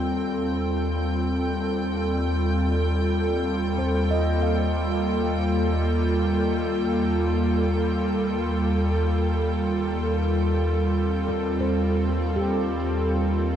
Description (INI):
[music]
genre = ambient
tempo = free time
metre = none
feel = none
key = Eb lydian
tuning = A4 = 443 Hz
[part]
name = airy breathy pad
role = sustained chords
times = 0.0-13.6 s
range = Eb2 to A4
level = -22 LUFS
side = equal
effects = chorus
[part]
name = handpan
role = arpeggios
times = 0.0-13.6 s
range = G4 to F5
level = -33 LUFS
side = equal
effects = tape echo
[part]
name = pedal harmonium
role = drone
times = 0.0-13.6 s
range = Eb3 to Bb3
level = -41 LUFS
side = left 1 dB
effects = none
[part]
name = warm chamber violin section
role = texture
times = 0.0-13.6 s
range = G5 to G6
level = -36 LUFS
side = right 1 dB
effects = none
[sound]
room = wet huge ambient reverb, RT60 7.8 s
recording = dark, warm production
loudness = -22 LUFS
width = side -9 dB against mid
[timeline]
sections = 0.0-13.6 A section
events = fade-out on violin section 0.0-13.6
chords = 0.0 Ebadd9